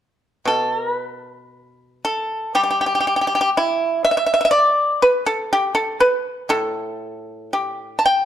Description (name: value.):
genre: chinese traditional, Chinese solo plucked strings.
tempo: 57-63 BPM.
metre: 2/4.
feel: rubato.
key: G gong mode.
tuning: A4 = 441 Hz.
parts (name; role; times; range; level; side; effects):
pipa; solo; 0.5-8.2 s; A2 to A5; -17 LUFS; equal; none.
room: light reverb.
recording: dark, warm production.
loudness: -17 LUFS.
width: side -10 dB against mid.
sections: 0.5-8.2 A section.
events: none.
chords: none.